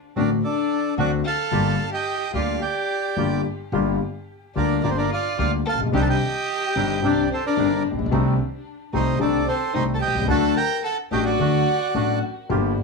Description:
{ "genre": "tango", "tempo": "109 BPM", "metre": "4/4", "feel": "rubato", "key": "G minor", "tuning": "A4 = 440 Hz", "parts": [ { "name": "bandoneon", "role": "melody", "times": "0.2-12.2 s", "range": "G4 to Bb5", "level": "-25 LUFS", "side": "right 7 dB", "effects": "plate reverb" }, { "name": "warm violin", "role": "second line", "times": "0.2-12.2 s", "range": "C4 to Bb4", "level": "-27 LUFS", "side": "left 5 dB", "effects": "tape echo" }, { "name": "warm concert grand piano", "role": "accompaniment", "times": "0.2-12.7 s", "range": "G1 to A4", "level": "-23 LUFS", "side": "left 5 dB", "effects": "none" }, { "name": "bandoneon", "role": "stabs", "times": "0.2-12.7 s", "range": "A3 to G4", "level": "-31 LUFS", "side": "right 7 dB", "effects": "none" }, { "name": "upright bass", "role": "bass", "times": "0.2-12.7 s", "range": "G1 to D2", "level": "-28 LUFS", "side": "right 2 dB", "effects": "none" } ], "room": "moderate small room reverb, RT60 0.5 s", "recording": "none", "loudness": "-20 LUFS", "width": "side -3 dB against mid", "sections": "0.0-3.7 A section; 3.7-12.8 B section", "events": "none", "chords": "0.0 D7; 1.5 Gm7; 5.9 Cmadd9; 8.1 Adim/C; 10.3 D", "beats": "0.43 0.98 | 1.52 2.07 2.62 3.17 | 3.73 4.29 4.84 5.39 | 5.94 6.49 7.03 7.57 | 8.12 8.66 9.20 9.74 | 10.29 10.84 11.39 11.95 | 12.51" }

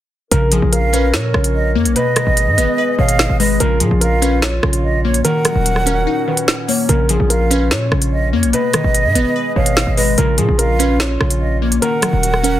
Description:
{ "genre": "hip hop, drill", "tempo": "146 BPM", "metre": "4/4", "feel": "half-time", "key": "Bb phrygian", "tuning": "A4 = 440 Hz", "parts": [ { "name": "dark concert grand piano", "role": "melody", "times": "0.3-12.6 s", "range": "Ab4 to Db5", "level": "-21 LUFS", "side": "equal", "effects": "none" }, { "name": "glassy wavetable pluck", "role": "accompaniment", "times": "0.3-12.6 s", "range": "Cb3 to Db5", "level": "-19 LUFS", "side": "left 2 dB", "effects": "chorus" }, { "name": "mellow woodwind section", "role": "sustained chords", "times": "0.3-12.6 s", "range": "Bb2 to Eb5", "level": "-26 LUFS", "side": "left 1 dB", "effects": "none" }, { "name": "hard-hitting 808-style bass", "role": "bass", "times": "0.3-12.6 s", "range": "Eb1 to Bb2", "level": "-17 LUFS", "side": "equal", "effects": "none" }, { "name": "drill drum kit", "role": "drums", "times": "0.3-12.5 s", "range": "hi-hat, rim click, snare drum", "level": "-17 LUFS", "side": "equal", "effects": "none" }, { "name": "breathy concert flute", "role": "second line", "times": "0.7-12.6 s", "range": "Db5 to Gb5", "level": "-22 LUFS", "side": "right 3 dB", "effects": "tape echo" } ], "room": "light reverb, small room ambience", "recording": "dense, heavily limited modern master", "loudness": "-13 LUFS", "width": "side -12 dB against mid", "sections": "0.3-12.6 A section", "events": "kick muted 6.1-6.9", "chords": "0.3 Bbm; 2.0 Abm; 3.6 Bbm; 5.2 Ebm7; 6.9 Bbm; 8.5 Abm; 10.2 Bbm; 11.8 Ebm7", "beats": "| 0.32 0.73 1.14 1.55 | 1.96 2.37 2.78 3.19 | 3.60 4.01 4.42 4.83 | 5.25 5.66 6.07 6.48 | 6.89 7.30 7.71 8.12 | 8.53 8.95 9.36 9.77 | 10.18 10.59 11.00 11.41 | 11.82 12.23" }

